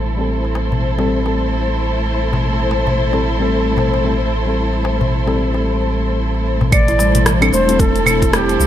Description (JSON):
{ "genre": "organic downtempo", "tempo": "112 BPM", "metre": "4/4", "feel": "swing 59% on 16ths", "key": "A minor pentatonic", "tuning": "A4 = 444 Hz", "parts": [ { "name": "warm symphonic string section", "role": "sustained chords", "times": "0.0-8.7 s", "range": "A3 to C5", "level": "-21 LUFS", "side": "equal", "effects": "sidechain pumping, low-pass filter" }, { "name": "warm sub bass", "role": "bass", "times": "0.0-8.7 s", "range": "E1 to C2", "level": "-19 LUFS", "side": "equal", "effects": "tube saturation, sidechain pumping" }, { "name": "deep house drum kit", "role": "drums", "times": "0.0-8.7 s", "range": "cabasa, claves, hi-hat, rim click", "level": "-18 LUFS", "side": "right 2 dB", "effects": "low-pass filter on hats, low-pass filter on perc, low-pass filter on snare, low-pass filter on room" }, { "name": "muted felt-like synth keys", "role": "accompaniment", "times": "0.2-8.4 s", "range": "G3 to A4", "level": "-22 LUFS", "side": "left 2 dB", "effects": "chorus, sidechain pumping, ping-pong delay" }, { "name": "darbuka", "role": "percussion", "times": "0.4-8.6 s", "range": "none", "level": "-24 LUFS", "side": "left 3 dB", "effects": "none" }, { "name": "mellow Native American-style cedar flute", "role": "melody", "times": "6.7-8.7 s", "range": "G4 to D5", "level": "-17 LUFS", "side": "equal", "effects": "ping-pong delay" }, { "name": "kalimba", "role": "arpeggios", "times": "6.7-8.7 s", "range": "E3 to A4", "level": "-24 LUFS", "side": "equal", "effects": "ping-pong delay" }, { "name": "electronic kick drum", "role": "drums", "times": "6.7-8.3 s", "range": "none", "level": "-16 LUFS", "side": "equal", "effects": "none" } ], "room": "light reverb, small room ambience", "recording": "none", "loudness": "-14 LUFS", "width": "side -11 dB against mid", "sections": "0.0-6.7 A section; 6.7-8.7 B section", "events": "none", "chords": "0.0 Am7" }